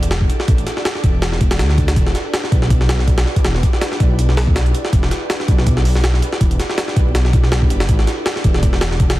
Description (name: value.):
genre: drum and bass, jungle.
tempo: 162 BPM.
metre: 4/4.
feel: swing 55% on 16ths.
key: E minor.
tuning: A4 = 440 Hz.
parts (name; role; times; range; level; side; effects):
airy breathy pad; sustained chords; 0.0-9.2 s; D4 to D5; -27 LUFS; right 1 dB; chorus, vintage 12-bit sampler grit.
dark detuned saw bass; bass; 0.0-9.2 s; E1 to D2; -17 LUFS; equal; none.
jungle sampler-style drum kit; drums; 0.0-9.2 s; hi-hat, kick drum, snare drum; -16 LUFS; equal; none.
room: little or no reverb.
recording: dense, heavily limited modern master, vinyl crackle.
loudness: -13 LUFS.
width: side -17 dB against mid.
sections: 0.0-9.2 A section.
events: none.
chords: 0.0 A7sus4; 2.0 Em7; 7.9 A7sus4.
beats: 0.11 | 0.48 0.85 1.22 1.59 | 1.96 2.33 2.70 3.07 | 3.44 3.81 4.18 4.55 | 4.93 5.30 5.67 6.04 | 6.41 6.78 7.15 7.52 | 7.89 8.26 8.63 9.00.